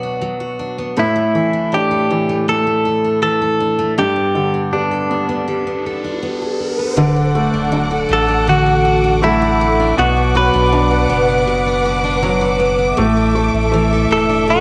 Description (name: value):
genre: pop ballad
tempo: 80 BPM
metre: 4/4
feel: straight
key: D major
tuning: A4 = 440 Hz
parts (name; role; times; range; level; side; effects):
- bright concert grand piano; accompaniment; 0.0-14.6 s; G2 to D4; -23 LUFS; equal; cassette tape
- picked steel-string acoustic guitar; arpeggios; 0.0-14.6 s; A2 to A4; -22 LUFS; equal; cassette tape
- direct-recorded clean electric guitar; melody; 1.0-14.6 s; D4 to B4; -19 LUFS; equal; cassette tape
- riser; sound effects; 5.6-7.0 s; none; -28 LUFS; equal; none
- warm studio string section; sustained chords; 7.0-14.6 s; A4 to D6; -22 LUFS; equal; cassette tape
- warm sub bass; bass; 7.0-14.6 s; D1 to B1; -23 LUFS; equal; none
room: moderate spring reverb, RT60 1.6 s, small room ambience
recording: home recording on cassette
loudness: -16 LUFS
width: mono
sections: 0.0-7.0 A section; 7.0-14.6 B section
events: riser 5.6-7.0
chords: 0.0 Bm; 1.0 Asus4; 4.0 Gadd9; 7.0 D; 10.0 Bm; 13.0 Asus4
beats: 0.22 | 0.97 1.72 2.47 3.22 | 3.97 4.72 5.47 6.22 | 6.97 7.72 8.47 9.22 | 9.97 10.72 11.47 12.22 | 12.97 13.72 14.47